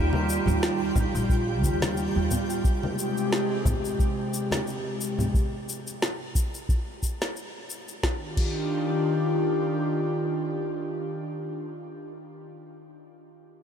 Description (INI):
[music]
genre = sunset chillout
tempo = 89 BPM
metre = 4/4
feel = swing 55% on 16ths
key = Eb major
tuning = A4 = 440 Hz
[part]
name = airy breathy pad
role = sustained chords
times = 0.0-11.5 s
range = C3 to G4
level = -28 LUFS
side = equal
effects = chorus
[part]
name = upright bass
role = bass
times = 0.0-2.3 s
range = Bb1 to Eb2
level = -28 LUFS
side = equal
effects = none
[part]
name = twinkling granular texture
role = texture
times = 0.0-2.7 s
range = G4 to G5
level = -37 LUFS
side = right 2 dB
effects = built-in reverb, wide subtle chorus
[part]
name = congas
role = percussion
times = 0.1-5.3 s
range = none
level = -33 LUFS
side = left 1 dB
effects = none
[part]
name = deep house drum kit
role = drums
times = 0.3-8.6 s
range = crash cymbal, shaker, snare drum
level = -33 LUFS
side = left 1 dB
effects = none
[part]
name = electronic kick drum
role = drums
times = 1.0-8.6 s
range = none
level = -25 LUFS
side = equal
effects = overdrive
[sound]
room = moderate huge ambient reverb, RT60 7.6 s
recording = dreamy mix soaked in reverb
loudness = -24 LUFS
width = side -8 dB against mid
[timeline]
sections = 0.0-8.0 A section; 8.0-10.7 B section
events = none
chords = 0.0 Ebadd9; 2.6 Abmaj7; 8.0 Ebmaj9